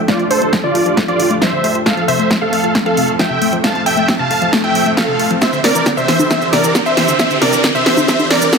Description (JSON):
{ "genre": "uplifting trance", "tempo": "135 BPM", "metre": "4/4", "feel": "straight", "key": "unclear", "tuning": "A4 = 438 Hz", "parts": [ { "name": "riser", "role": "sound effects", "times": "2.9-8.6 s", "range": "none", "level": "-26 LUFS", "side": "equal", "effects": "none" }, { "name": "supersaw chords", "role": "melody", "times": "0.1-8.6 s", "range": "F4 to A5", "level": "-16 LUFS", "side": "right 2 dB", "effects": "sidechain pumping, low-pass filter, digital delay" }, { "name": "wide unison pluck", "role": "second line", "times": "0.1-8.6 s", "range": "C5 to A5", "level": "-23 LUFS", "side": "equal", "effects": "vintage 12-bit sampler grit, sidechain pumping, dub echo" }, { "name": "analog pluck", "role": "arpeggios", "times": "0.1-8.6 s", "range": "C3 to A3", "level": "-22 LUFS", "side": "left 4 dB", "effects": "chorus, sidechain pumping, dub echo" }, { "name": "electronic kick drum", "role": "drums", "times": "0.1-8.6 s", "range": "none", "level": "-23 LUFS", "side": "equal", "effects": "high-pass filter on kick, studio reverb" }, { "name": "punchy analog drum machine", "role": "drums", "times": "0.1-8.6 s", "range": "congas, hi-hat, shaker, snare drum", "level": "-17 LUFS", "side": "equal", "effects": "studio reverb, sidechain pumping on hats, sidechain pumping on perc" } ], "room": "moderate digital room reverb, RT60 1.1 s", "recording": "high-pass filter", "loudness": "-12 LUFS", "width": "side -5 dB against mid", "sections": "0.0-8.6 A section", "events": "build-up 0.0-8.6; drum fill 0.0-8.6; filter sweep on supersaw synth 0.0-8.6; filter sweep 0.0-8.6; riser 2.9-8.6", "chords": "0.0 Dm; 1.9 F; 5.4 Cadd9" }